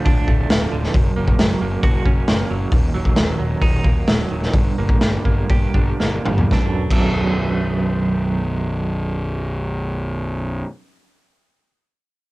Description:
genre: quiet-loud alternative rock.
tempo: 114-136 BPM.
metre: 4/4.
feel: straight.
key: B minor.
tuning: A4 = 441 Hz.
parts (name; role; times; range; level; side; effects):
semi-hollow electric guitar; arpeggios; 0.0-10.7 s; B1 to G4; -24 LUFS; right 3 dB; tremolo, cassette tape.
fuzz picked electric bass; bass; 0.1-10.6 s; B0 to G1; -23 LUFS; equal; overdrive, transformer saturation.
raw garage drum kit; drums; 0.1-7.1 s; crash cymbal, hi-hat, kick drum, snare drum, toms; -18 LUFS; equal; none.
room: light reverb.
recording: home recording on cassette.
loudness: -16 LUFS.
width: side -20 dB against mid.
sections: 0.0-6.5 A section; 6.5-10.7 B section.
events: slowing down 2.7-6.5; drum fill 6.0-6.5.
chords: 0.0 Dm; 0.9 F#; 2.7 D#m; 4.5 Gm; 6.5 Bm.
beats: 0.06 0.50 | 0.94 1.39 1.83 2.28 | 2.72 3.17 3.62 4.07 | 4.54 5.01 5.50 6.00 | 6.52 7.04 7.57 8.09 | 8.62 9.14 9.66 10.19.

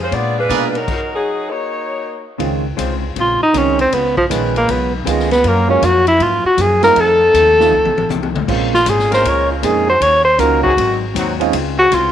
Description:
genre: jazz, big band swing.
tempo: 158 BPM.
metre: 4/4.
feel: swing 65% on 8ths.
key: Db major.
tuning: A4 = 440 Hz.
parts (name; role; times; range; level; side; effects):
warm saxophone section; melody; 0.0-2.3 s; Gb3 to D5; -19 LUFS; left 2 dB; none.
upright bass; bass; 0.0-12.1 s; Ab1 to Cb3; -21 LUFS; equal; none.
hollow-body jazz guitar; accompaniment; 0.1-12.1 s; F2 to Gb4; -25 LUFS; left 10 dB; none.
swinging big-band drum kit; drums; 0.1-12.0 s; crash cymbal, hi-hat, kick drum, ride cymbal, snare drum, toms; -25 LUFS; left 5 dB; none.
warm upright piano; accompaniment; 0.5-11.5 s; Eb3 to F4; -21 LUFS; right 14 dB; none.
bright trumpet section; stabs; 0.5-0.7 s; Ab4 to D5; -22 LUFS; right 9 dB; none.
warm trombone section; sustained chords; 2.8-11.9 s; F3 to C5; -24 LUFS; equal; none.
breathy tenor saxophone; melody; 3.2-12.1 s; Eb3 to Db5; -12 LUFS; equal; none.
room: light reverb.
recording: 1960s-style stereo with parts hard left and right.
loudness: -12 LUFS.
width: side -10 dB against mid.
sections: 0.0-2.4 A section; 2.4-12.1 B section.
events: stop 0.9-2.4; tenor saxophone solo 2.4-12.1; drum fill 7.7-8.5.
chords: 0.1 Bb7b9; 0.9 Ebm7; 1.6 Gb6/Bb; 2.4 Dbmaj7; 3.9 Db7; 5.4 Gbmaj7; 7.0 F7; 8.5 Bbm7; 10.0 Ebm7; 10.8 Ab7; 11.5 Dbmaj7.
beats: 0.12 0.50 | 0.88 1.26 1.64 2.02 | 2.40 2.77 3.15 3.54 | 3.92 4.30 4.68 5.06 | 5.44 5.82 6.20 6.58 | 6.96 7.34 7.72 8.10 | 8.48 8.87 9.25 9.63 | 10.01 10.39 10.77 11.15 | 11.53 11.91.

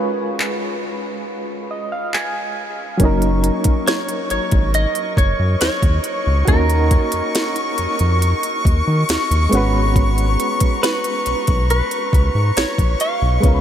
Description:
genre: contemporary R&B.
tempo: 69 BPM.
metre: 4/4.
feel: straight.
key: unclear.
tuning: A4 = 440 Hz.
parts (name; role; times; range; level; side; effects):
soft electric-piano-like synth keys; accompaniment; 0.0-13.6 s; Gb3 to Ab5; -23 LUFS; right 1 dB; chorus, tremolo.
trap drum kit; drums; 0.4-13.6 s; handclaps, hi-hat, kick drum, snare drum; -20 LUFS; equal; none.
clear woodwind section; sustained chords; 3.0-13.6 s; Gb4 to Db6; -24 LUFS; left 2 dB; none.
round analog bass; bass; 3.0-13.6 s; Gb1 to Eb3; -18 LUFS; equal; none.
direct-recorded clean electric guitar; melody; 3.9-13.6 s; Bb4 to F5; -23 LUFS; right 1 dB; wide subtle chorus, ping-pong delay.
room: moderate huge ambient reverb, RT60 8.1 s.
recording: dreamy mix soaked in reverb.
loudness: -15 LUFS.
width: side -10 dB against mid.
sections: 0.0-3.0 A section; 3.0-13.6 B section.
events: synth keys fill 1.3-3.0.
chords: 0.0 Db7; 3.0 Gb6; 6.5 Ebm7; 9.5 Abm11.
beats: 0.39 1.26 2.13 | 3.00 3.87 4.74 5.61 | 6.48 7.35 8.22 9.09 | 9.96 10.83 11.70 12.56 | 13.43.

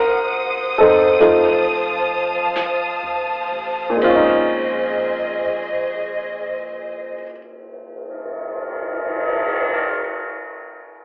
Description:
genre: jazz.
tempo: 40-47 BPM.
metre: 4/4.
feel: swing 67% on 8ths.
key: Bb minor.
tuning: A4 = 439 Hz.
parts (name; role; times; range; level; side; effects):
clear upright piano; accompaniment; 0.0-11.0 s; Bb2 to C5; -16 LUFS; equal; none.
warm symphonic string section; sustained chords; 0.0-7.2 s; Ab4 to Eb6; -21 LUFS; equal; none.
upright bass; bass; 0.0-7.2 s; A1 to C3; -43 LUFS; equal; none.
jazz brush drum kit; drums; 1.2-9.7 s; brushed snare drum, cymbal swell, hi-hat, kick drum, ride cymbal, snare drum; -26 LUFS; equal; none.
room: moderate studio reverb, RT60 1.0 s.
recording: band playing live in one room, telephone sound.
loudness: -16 LUFS.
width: side -29 dB against mid.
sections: 0.0-4.0 A section; 4.0-10.0 B section.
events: slowing down 0.0-4.0.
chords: 0.0 Cm7b5; 1.2 F7; 4.0 Bbm11.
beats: 1.20 2.56 | 4.02 5.52 7.01 8.50.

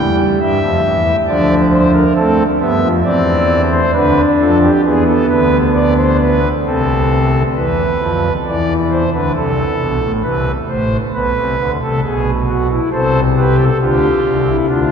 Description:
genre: classical, baroque-style 3-part fugue for pipe organ.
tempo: 67 BPM.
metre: 3/4.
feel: straight.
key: unclear.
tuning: A4 = 440 Hz.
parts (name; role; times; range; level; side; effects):
pipe organ, foundations; solo; 0.0-14.9 s; A1 to G5; -12 LUFS; equal; none.
room: wet cathedral reverb, RT60 7.3 s.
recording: recorded in a church or concert hall.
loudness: -12 LUFS.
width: side -7 dB against mid.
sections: 0.0-7.5 A section; 7.5-14.9 B section.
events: none.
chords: 0.0 A7(no3) (rootless); 1.3 Dm; 2.2 Am; 3.9 Bm7b5/D; 4.8 E7; 6.6 Am/C; 7.5 E5; 9.3 Am/C; 10.2 Am; 12.0 Eadd9/B; 12.9 Am/C.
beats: 0.40 1.28 | 2.16 3.04 3.94 | 4.84 5.74 6.64 | 7.55 8.45 9.35 | 10.24 11.13 12.03 | 12.92 13.81 14.69.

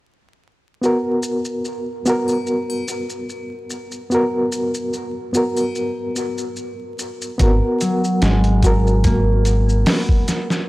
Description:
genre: trip hop.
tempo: 73 BPM.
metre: 4/4.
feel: swing 54% on 16ths.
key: unclear.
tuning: A4 = 439 Hz.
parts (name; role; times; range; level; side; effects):
reed electric piano; accompaniment; 0.8-10.7 s; B3 to A#4; -21 LUFS; equal; fast tremolo, low-pass filter, tape echo.
maracas and triangle; percussion; 0.8-10.7 s; none; -32 LUFS; left 2 dB; none.
deep dub fingered electric bass; bass; 7.4-9.8 s; G#1; -16 LUFS; equal; tube saturation.
trip hop sampler-style drum kit; drums; 7.4-10.7 s; hi-hat, kick drum, snare drum; -18 LUFS; equal; none.
concert harp; arpeggios; 7.8-10.7 s; F#3 to B3; -20 LUFS; equal; vintage 12-bit sampler grit, low-pass filter, tape echo.
room: little or no reverb.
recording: dry, gritty hardware recording, transformer saturation, vinyl crackle.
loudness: -16 LUFS.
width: side -18 dB against mid.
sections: 0.8-7.4 A section; 7.4-10.7 B section.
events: filter sweep on harp 7.4-10.7.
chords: 0.8 F#add11/B; 7.4 G#m9.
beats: | 0.83 1.65 2.47 3.29 | 4.12 4.94 5.76 6.58 | 7.40 8.22 9.05 9.87.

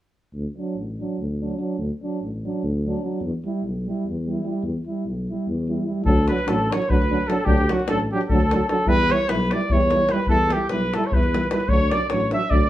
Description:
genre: balkan folk, Balkan brass band.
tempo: 297 BPM (eighths).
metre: 7/8.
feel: straight.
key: D major.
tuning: A4 = 439 Hz.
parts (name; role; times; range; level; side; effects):
mellow tuba; bass; 0.3-12.7 s; A1 to E2; -25 LUFS; equal; none.
mellow euphonium; accompaniment; 0.6-12.6 s; F#3 to G3; -28 LUFS; right 3 dB; none.
warm euphonium; accompaniment; 0.6-12.6 s; D4 to E4; -30 LUFS; equal; none.
mellow cornet; melody; 6.1-12.7 s; F#4 to E5; -24 LUFS; right 2 dB; none.
clear trumpet; second line; 6.1-12.7 s; F#4 to E5; -28 LUFS; left 2 dB; none.
davul; percussion; 6.1-12.7 s; none; -24 LUFS; left 1 dB; none.
room: wet small room reverb, RT60 0.5 s.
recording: heard from further back in the room.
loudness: -20 LUFS.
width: side -13 dB against mid.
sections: 0.3-6.1 A section; 6.1-12.7 B section.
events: none.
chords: 0.3 D; 3.2 Em; 6.1 D; 8.9 Em; 11.7 D.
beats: | 0.34 0.55 0.75 0.95 1.16 1.36 1.57 | 1.77 1.98 2.18 2.39 2.59 2.80 3.00 | 3.21 3.41 3.61 3.82 4.02 4.22 4.43 | 4.63 4.83 5.04 5.24 5.44 5.65 5.85 | 6.05 6.25 6.46 6.66 6.86 7.06 7.26 | 7.46 7.67 7.87 8.07 8.27 8.47 8.67 | 8.87 9.07 9.28 9.48 9.68 9.88 10.08 | 10.28 10.48 10.68 10.88 11.08 11.28 11.48 | 11.68 11.88 12.08 12.28 12.48 12.68.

